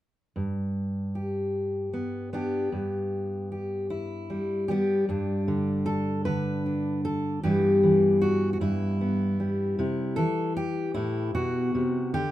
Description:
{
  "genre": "folk, solo fingerstyle acoustic guitar",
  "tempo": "51 BPM (dotted quarters)",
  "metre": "6/8",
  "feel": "straight",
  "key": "G major",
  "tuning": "A4 = 442 Hz",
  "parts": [
    { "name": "fingerpicked steel-string acoustic guitar", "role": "solo", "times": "0.4-12.3 s", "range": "G2 to B4", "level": "-24 LUFS", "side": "equal", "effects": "none" }
  ],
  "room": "light reverb",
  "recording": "minimal, uncompressed stereo recording",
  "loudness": "-25 LUFS",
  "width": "side -14 dB against mid",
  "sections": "0.4-5.1 A section; 5.1-12.3 B section",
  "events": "none",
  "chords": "0.4 G; 2.7 Em/G; 5.1 G; 7.4 Em/G; 9.8 C"
}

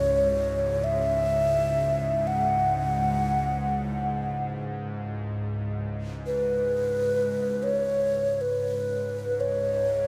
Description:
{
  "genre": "world meditative, free-time meditation music",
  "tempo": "free time",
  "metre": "none",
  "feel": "none",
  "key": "C# minor pentatonic",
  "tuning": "A4 = 440 Hz",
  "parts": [
    { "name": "breathy mellow alto ocarina", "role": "melody", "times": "0.0-10.1 s", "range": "B4 to F#5", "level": "-27 LUFS", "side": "equal", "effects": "diffuse ambient delay" },
    { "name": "bowed-like drone", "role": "drone", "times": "0.0-10.1 s", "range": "C#2 to G#2", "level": "-33 LUFS", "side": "equal", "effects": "built-in reverb" },
    { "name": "bronze singing bowl", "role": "texture", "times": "0.0-0.6 s", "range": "C#4 to F#4", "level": "-49 LUFS", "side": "equal", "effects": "none" }
  ],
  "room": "wet lush hall reverb, RT60 2.7 s",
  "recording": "dreamy mix soaked in reverb",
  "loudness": "-27 LUFS",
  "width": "mono",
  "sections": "0.0-10.1 A section",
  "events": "none",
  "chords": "none"
}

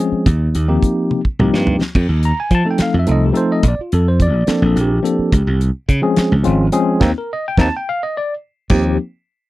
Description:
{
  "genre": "electric jazz fusion",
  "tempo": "71 BPM (dotted quarters)",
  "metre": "6/8",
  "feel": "straight",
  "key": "Eb lydian",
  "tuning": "A4 = 440 Hz",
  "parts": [
    { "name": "bright tine electric piano", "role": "accompaniment", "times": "0.0-9.0 s", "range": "F3 to Bb5", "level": "-17 LUFS", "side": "left 1 dB", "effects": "medium stereo tremolo" },
    { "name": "slap bass", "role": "bass", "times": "0.1-9.0 s", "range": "Ab1 to F3", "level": "-15 LUFS", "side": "equal", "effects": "none" },
    { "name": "damped 70s drum kit", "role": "drums", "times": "0.3-8.8 s", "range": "crash cymbal, hi-hat, kick drum, snare drum, splash cymbal, toms", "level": "-17 LUFS", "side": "equal", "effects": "none" }
  ],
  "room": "little or no reverb",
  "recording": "dry, close 1970s-style studio recording",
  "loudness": "-14 LUFS",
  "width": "side -17 dB against mid",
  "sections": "0.0-1.9 A section; 1.9-8.7 B section",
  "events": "drum fill 1.1-1.9, 7.9-8.7; band accent 7.0-8.7",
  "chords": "0.3 Eb69; 1.9 F7; 3.6 Bbmaj9; 5.3 Dbmaj7; 7.0 Eb5; 8.7 Eb69"
}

